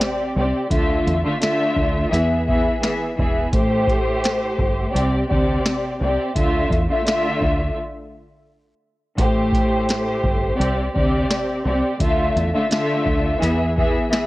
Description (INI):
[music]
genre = hip hop, boom-bap hip-hop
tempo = 85 BPM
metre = 4/4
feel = swing 58% on 16ths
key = A minor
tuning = A4 = 439 Hz
[part]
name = warm studio string section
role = accompaniment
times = 0.0-14.3 s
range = A2 to E5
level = -20 LUFS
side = equal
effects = cassette tape, high-pass filter, low-pass filter
[part]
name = booming analog drum machine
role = drums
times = 0.0-14.3 s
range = hi-hat, kick drum, snare drum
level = -23 LUFS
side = equal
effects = cassette tape
[part]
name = deep dub fingered electric bass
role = bass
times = 0.4-14.0 s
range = E1 to E2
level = -23 LUFS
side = equal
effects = none
[sound]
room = little or no reverb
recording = home recording on cassette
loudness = -17 LUFS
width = side -18 dB against mid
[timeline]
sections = 0.0-14.3 A section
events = break 7.8-9.2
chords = 0.0 Csus2; 0.7 Dmadd9; 2.1 E; 3.5 Am7; 4.9 Csus2; 6.4 Dmadd9; 7.8 N.C.; 9.2 Am7; 10.6 Csus2; 12.0 Dmadd9; 13.4 E